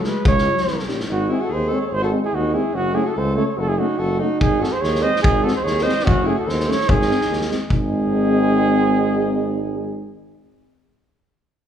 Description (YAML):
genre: balkan folk, Balkan brass band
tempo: 145 BPM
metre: 2/4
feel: straight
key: G# phrygian dominant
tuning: A4 = 435 Hz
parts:
  - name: dark cornet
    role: melody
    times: 0.0-10.1 s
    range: F#4 to D#5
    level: -22 LUFS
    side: right 2 dB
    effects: none
  - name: mellow alto saxophone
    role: second line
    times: 0.0-10.1 s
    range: G#3 to B#4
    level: -25 LUFS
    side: equal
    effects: none
  - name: mellow euphonium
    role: accompaniment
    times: 0.0-10.1 s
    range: B#3 to F#4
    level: -25 LUFS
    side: left 4 dB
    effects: none
  - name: warm euphonium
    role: accompaniment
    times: 0.0-10.1 s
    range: G3 to A3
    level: -27 LUFS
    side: right 4 dB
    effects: none
  - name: clear tuba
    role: bass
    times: 0.0-10.1 s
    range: F#1 to D#2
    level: -25 LUFS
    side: equal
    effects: none
  - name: loose indie drum kit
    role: percussion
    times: 0.0-1.0, 4.4-7.9 s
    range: kick drum, snare drum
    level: -22 LUFS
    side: left 1 dB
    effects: none
room: moderate recital hall reverb, RT60 1.5 s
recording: recorded in a church or concert hall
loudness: -17 LUFS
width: side -9 dB against mid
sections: 0.0-1.1 A section; 1.1-7.7 B section; 7.7-9.3 C section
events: none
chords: 0.3 C#; 0.7 A#m13; 1.1 G#; 2.8 F#m; 4.4 G#; 6.1 F#m; 6.9 G#